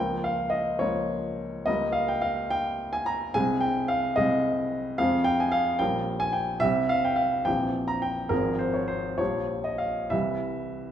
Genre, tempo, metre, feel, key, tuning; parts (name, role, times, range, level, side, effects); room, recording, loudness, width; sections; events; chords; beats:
classical, romantic character piece for solo piano; 62-75 BPM (dotted quarters); 6/8; rubato; Ab major, F minor from 5.0 s; A4 = 440 Hz
warm baby grand piano; solo; 0.0-10.9 s; Ab1 to Bb5; -24 LUFS; equal
wet recital hall reverb, RT60 1.5 s; minimal, uncompressed stereo recording; -24 LUFS; side -10 dB against mid
0.0-10.9 A section
0.0 Bbm/Db; 1.7 Eb9/Db; 3.4 Ab/C; 5.0 Fm; 5.8 Gdim/Bb; 6.6 C5; 7.5 C7/Bb; 8.3 Fm/Ab; 9.2 Gm7b5/Bb; 10.1 C
0.81 | 1.68 2.54 | 3.36 4.17 | 4.99 5.80 | 6.63 7.47 | 8.31 9.19 | 10.13